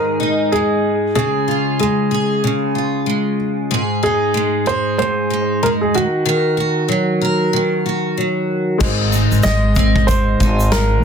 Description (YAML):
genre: acoustic pop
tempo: 94 BPM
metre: 4/4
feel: swing 60% on 16ths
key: Ab mixolydian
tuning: A4 = 440 Hz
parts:
  - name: warm upright piano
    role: melody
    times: 0.0-11.0 s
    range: Gb4 to Eb5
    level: -19 LUFS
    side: right 1 dB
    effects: tape echo
  - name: picked steel-string acoustic guitar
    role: accompaniment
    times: 0.0-11.0 s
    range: Ab2 to Bb4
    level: -17 LUFS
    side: equal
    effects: double-tracked left and right
  - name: warm upright piano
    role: accompaniment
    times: 8.8-11.0 s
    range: Ab3 to C5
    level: -26 LUFS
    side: left 8 dB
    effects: none
  - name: upright bass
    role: bass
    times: 8.8-11.0 s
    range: Ab1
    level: -17 LUFS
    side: equal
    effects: none
  - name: natural country drum kit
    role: drums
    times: 8.8-10.9 s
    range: crash cymbal, kick drum, shaker, snare drum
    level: -19 LUFS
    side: equal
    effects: none
room: moderate small room ambience, RT60 0.5 s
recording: dense, heavily limited modern master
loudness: -14 LUFS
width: side -7 dB against mid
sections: 0.0-8.8 A section; 8.8-11.0 B section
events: none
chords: 0.0 Ab5; 1.2 Db; 3.7 Ab; 5.9 Ebm; 8.8 Ab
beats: 0.52 | 1.16 1.80 2.43 3.07 | 3.71 4.35 4.98 5.62 | 6.26 6.90 7.53 8.17 | 8.81 9.45 10.08 10.72